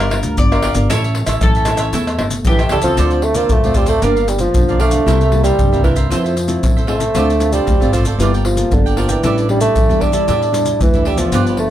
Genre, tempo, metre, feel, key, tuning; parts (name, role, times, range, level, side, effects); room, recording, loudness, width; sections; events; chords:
samba and choro; 115 BPM; 4/4; straight; A4 = 440 Hz
bowl-back mandolin; second line; 0.0-3.0 s; G4 to D5; -22 LUFS; left 2 dB
cavaquinho; accompaniment; 0.0-11.6 s; E4 to G5; -24 LUFS; right 6 dB
nylon-string guitar; accompaniment; 0.0-11.7 s; G2 to Bb4; -21 LUFS; left 2 dB
upright bass; bass; 0.0-11.7 s; G1 to F2; -18 LUFS; equal
maracas, pandeiro, tamborim and surdo; percussion; 0.0-11.7 s; -18 LUFS; left 1 dB
mellow bassoon; melody; 2.5-11.7 s; D3 to D4; -17 LUFS; right 2 dB
light reverb; -12 LUFS; side -12 dB against mid
0.0-3.0 A section; 3.0-11.7 B section
0.0 Gm7; 0.9 A; 3.0 Dm7; 4.0 Gm7; 5.1 C7; 6.1 Fmaj7; 7.2 Dm7; 8.2 Gm9; 9.2 A7sus4